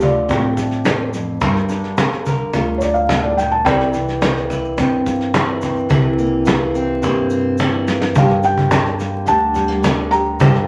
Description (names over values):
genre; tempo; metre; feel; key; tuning
acoustic folk duo or small band; 107 BPM; 4/4; straight; unclear; A4 = 438 Hz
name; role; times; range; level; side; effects
felt-muted upright piano; melody; 0.0-4.7, 8.2-10.7 s; C#5 to Bb5; -21 LUFS; equal; none
nylon-string guitar; accompaniment; 0.0-10.7 s; D2 to Bb4; -22 LUFS; equal; none
upright bass; bass; 0.0-10.7 s; G1 to G2; -28 LUFS; equal; none
soft brush drum kit; drums; 0.0-10.6 s; kick drum, snare drum; -26 LUFS; equal; none
cajon; percussion; 0.0-10.5 s; none; -21 LUFS; equal; none
tube shaker; percussion; 0.0-10.5 s; none; -46 LUFS; equal; none
picked steel-string acoustic guitar; arpeggios; 5.9-8.2 s; E3 to G4; -24 LUFS; equal; none
room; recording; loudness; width
wet studio reverb, RT60 0.6 s; vinyl crackle; -17 LUFS; mono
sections
0.0-5.9 A section; 5.9-8.2 B section; 8.2-10.7 C section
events
felt piano solo 0.0-5.9; drum fill 7.6-8.2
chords
0.0 Dm7; 1.4 Gm7; 3.7 C7; 8.2 Gmadd9